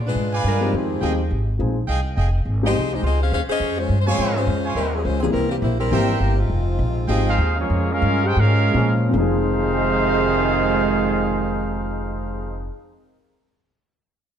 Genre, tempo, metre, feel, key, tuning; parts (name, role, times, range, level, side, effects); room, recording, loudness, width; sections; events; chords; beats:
jazz, big band swing; 146-208 BPM; 4/4; swing 60% on 8ths; F minor; A4 = 440 Hz
upright bass; bass; 0.0-12.7 s; F1 to Bb2; -22 LUFS; equal
warm saxophone section; melody; 0.1-7.4 s; Eb3 to F5; -24 LUFS; left 2 dB
bright trumpet section; stabs; 0.3-7.5 s; Ab4 to Ab5; -27 LUFS; right 3 dB
warm grand piano; accompaniment; 0.6-13.7 s; F2 to Bb6; -25 LUFS; left 2 dB
clear trombone section; second line; 6.4-12.7 s; F2 to G4; -23 LUFS; right 4 dB
mellow trumpet section; melody; 7.3-12.7 s; Bb3 to G5; -23 LUFS; left 1 dB
moderate recital hall reverb, RT60 1.3 s; dark, warm production; -18 LUFS; side -8 dB against mid
0.0-7.7 A section; 7.7-9.1 B section; 9.1-12.4 C section
slowing down 6.5-9.1
0.0 Bdim7; 0.7 Fm9; 3.0 Dbmaj7; 5.3 C7; 6.5 Fm9
0.15 0.44 | 0.73 1.02 1.31 1.59 | 1.88 2.17 2.46 2.75 | 3.04 3.33 3.61 3.90 | 4.19 4.48 4.77 5.05 | 5.34 5.63 5.92 6.21 | 6.50 6.79 7.08 7.38 | 7.70 8.02 8.37 8.73 | 9.13 9.54 9.95 10.36 | 10.78 11.19 11.60 12.01